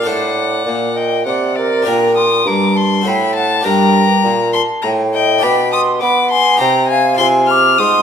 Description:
classical, baroque-style sonata movement with continuo; 101 BPM; 3/4; straight; G minor; A4 = 440 Hz
rich violin; melody; 0.0-8.0 s; D5 to F6; -16 LUFS; left 7 dB
baroque flute; second line; 0.0-8.0 s; Bb4 to D6; -17 LUFS; right 4 dB
harpsichord; accompaniment; 0.0-8.0 s; G2 to D5; -19 LUFS; left 2 dB
mellow bassoon; bass; 0.0-8.0 s; G2 to B3; -17 LUFS; right 1 dB
wet recital hall reverb, RT60 1.4 s; -11 LUFS; side -8 dB against mid
0.0-8.0 A section
0.1 D7/A; 1.9 Gm/Bb; 3.1 F#dim/A; 3.6 Gm; 5.4 G/B; 6.6 Cm; 7.2 Fm/C

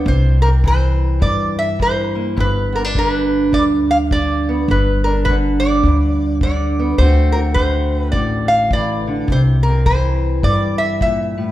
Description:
acoustic country blues, solo or duo; 104 BPM; 4/4; swing 60% on 8ths; G major; A4 = 440 Hz
lap resonator guitar; melody; 0.0-11.5 s; Bb4 to F5; -20 LUFS; equal
fingerpicked steel-string acoustic guitar; accompaniment; 0.0-11.5 s; G2 to F#4; -20 LUFS; right 1 dB
upright bass; bass; 0.1-11.5 s; G1 to G2; -18 LUFS; equal
kick drum; drums; 0.1-11.2 s; -21 LUFS; equal
wet recital hall reverb, RT60 1.6 s; recorded in a church or concert hall; -14 LUFS; side -14 dB against mid
0.0-11.5 A section
0.1 C; 2.4 G; 7.0 D7; 9.3 C7

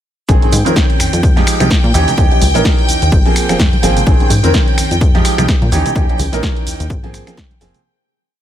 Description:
filtered disco house; 127 BPM; 4/4; swing 57% on 16ths; Bb dorian; A4 = 441 Hz
clear baby grand piano; accompaniment; 0.3-7.8 s; Eb3 to Bb4; -17 LUFS; right 2 dB; phaser, sidechain pumping
string machine, full ensemble; sustained chords; 0.3-7.9 s; G5; -22 LUFS; left 1 dB; ensemble chorus, sidechain pumping
plucky analog bass; bass; 0.3-7.7 s; F1 to Bb2; -16 LUFS; left 1 dB; sidechain pumping
electronic kick drum; drums; 0.3-7.5 s; -13 LUFS; equal
punchy analog drum machine; drums; 0.3-7.8 s; finger snaps, hi-hat, shaker, snare drum; -20 LUFS; equal; sidechain pumping on hats, sidechain pumping on perc
tube shaker and congas; percussion; 0.3-7.8 s; -27 LUFS; right 2 dB
digital ambience; -10 LUFS; side -11 dB against mid
0.3-7.8 drop
drop 0.3-7.8; fade-out 5.3-7.8
0.3 Bbm11; 1.2 Fm9; 1.9 Eb7b9; 3.1 Ab69; 4.1 Bbm11; 5.0 Fm9; 5.7 Eb7b9; 6.9 Ab69

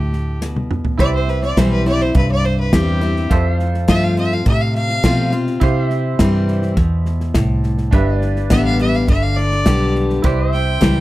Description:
honky-tonk and classic country; 104 BPM; 4/4; straight; A4 = 437 Hz
clear fiddle; melody; 0.0-11.0 s; G4 to G5; -22 LUFS; equal
picked steel-string acoustic guitar; accompaniment; 0.0-11.0 s; F2 to G4; -20 LUFS; left 2 dB
vintage muted fingered electric bass; bass; 0.0-11.0 s; G1 to C3; -18 LUFS; equal
natural country drum kit; drums; 0.1-11.0 s; hi-hat, kick drum, snare drum, toms; -18 LUFS; equal
bright upright piano; accompaniment; 1.0-11.0 s; D4 to C5; -28 LUFS; right 6 dB
pedal steel guitar; sustained chords; 1.0-11.0 s; B4 to F5; -28 LUFS; right 1 dB
studio ambience; dry, close 1970s-style studio recording; -14 LUFS; side -17 dB against mid
1.0-11.0 A section
drum fill 0.4-1.0; fiddle solo 1.0-11.0
0.0 G; 1.0 C; 3.3 F; 5.6 C; 7.9 G; 10.2 C

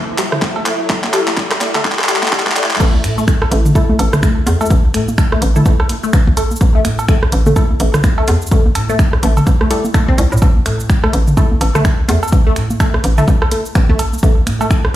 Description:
minimal techno; 126 BPM; 4/4; swing 59% on 16ths; A4 = 440 Hz
wavetable chord stab; stabs; 0.0-13.2 s; A3 to A4; -24 LUFS; equal; digital delay
riser; sound effects; 0.0-2.8 s; -25 LUFS; left 1 dB
ethereal airy pad; texture; 0.0-2.8 s; E4 to E5; -25 LUFS; equal; ensemble chorus, built-in reverb, tremolo, sidechain pumping
booming analog drum machine; percussion; 0.1-14.9 s; congas, cowbell, rim click, toms; -20 LUFS; right 1 dB; digital delay
resonant blip pluck; riff; 0.2-14.7 s; G3 to C4; -21 LUFS; left 1 dB; phaser, sidechain pumping, digital delay
house drum kit; drums; 0.2-14.8 s; crash cymbal, finger snaps, handclaps, hi-hat, shaker; -21 LUFS; equal; high-pass filter on snare, high-pass filter on hats, high-pass filter on cymbals, high-pass filter on perc, high-pass filter on room
electronic kick drum; drums; 0.4-14.8 s; -13 LUFS; equal
hollow knocking FM bass; bass; 2.8-14.9 s; A1 to A2; -16 LUFS; equal; sidechain pumping
light reverb; played on a big sound system in a bare room, stone room reverb, high-pass filter; -11 LUFS; side -13 dB against mid
0.0-2.8 A section; 2.8-15.0 B section
build-up 0.0-2.8; drum fill 0.0-2.8; riser 0.0-2.8; filter sweep on synth arpeggio sound 0.0-2.8; drop 2.8-15.0
0.0 A5

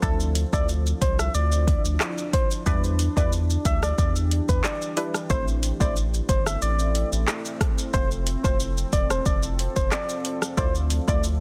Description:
dancehall; 91 BPM; 4/4; straight; A minor; A4 = 445 Hz
soft struck synth lead; melody; 0.0-11.2 s; A4 to E5; -32 LUFS; equal; chorus, tape echo
wavetable chord stab; accompaniment; 0.0-11.2 s; F3 to D5; -34 LUFS; equal; sidechain pumping
deep dark ambient pad; sustained chords; 0.0-11.4 s; E3 to E5; -36 LUFS; equal; chorus, built-in reverb
saturated sub bass; bass; 0.0-11.4 s; E1 to E2; -27 LUFS; equal
afro-pop drum kit; drums; 0.0-11.4 s; handclaps, hi-hat, kick drum, rim click, shaker; -27 LUFS; equal; soft clipping on snare
maracas; percussion; 0.0-11.4 s; -40 LUFS; equal
little or no reverb; dense, heavily limited modern master; -24 LUFS; mono
0.0-11.4 A section
0.0 Dmadd9; 2.7 Em7; 5.3 Am; 7.9 F; 10.6 Dmadd9

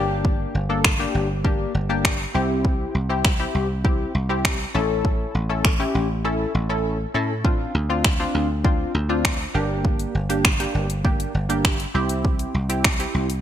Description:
dance-pop; 100 BPM; 4/4; straight; A4 = 440 Hz
funky polysynth comp; accompaniment; 0.0-13.3 s; Bb3 to A4; -25 LUFS; left 1 dB; chorus, sidechain pumping
dry thumbed slap bass; bass; 0.0-13.4 s; G1 to A2; -24 LUFS; equal; sidechain pumping
house drum kit; drums; 0.2-13.4 s; finger snaps, hi-hat, kick drum; -20 LUFS; equal; overdrive, gated reverb
light reverb, digital ambience; bright 1980s-style digital production; -19 LUFS; side -10 dB against mid
0.0-13.4 A section
drums muted 6.2-7.4
0.0 Gm; 2.3 C; 4.7 A; 7.4 Dm7; 9.5 Gm; 11.9 C

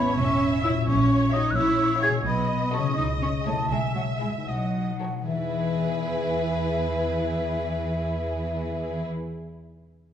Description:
cinematic, playful, whimsical film cue; 73-87 BPM (dotted quarters); 6/8; straight; E major; A4 = 440 Hz
rich chamber violin section; melody; 0.0-9.1 s; B4 to E5; -35 LUFS; left 2 dB
mellow hollow concert flute; second line; 0.0-9.1 s; E5 to G#6; -29 LUFS; left 1 dB
rich studio violin section; second line; 0.0-9.0 s; D#4 to C#5; -39 LUFS; equal
rich studio viola section; accompaniment; 0.0-9.1 s; E4 to E5; -33 LUFS; equal
concert harp; arpeggios; 0.0-9.3 s; A2 to E5; -30 LUFS; left 6 dB
warm chamber double bass section; bass; 0.0-9.1 s; E1 to E2; -31 LUFS; right 3 dB
warm studio cello section; bass; 0.0-9.1 s; E3 to G#4; -29 LUFS; right 2 dB
wet recital hall reverb, RT60 1.6 s; dark, warm production, nothing above 10.5 kHz; -23 LUFS; side -9 dB against mid
0.0-5.3 A section; 5.3-8.6 B section
slowing down 1.6-5.3
0.0 A; 0.9 F#7/A#; 2.3 B7; 3.0 C#m; 3.7 E/B; 4.5 B9; 5.3 E

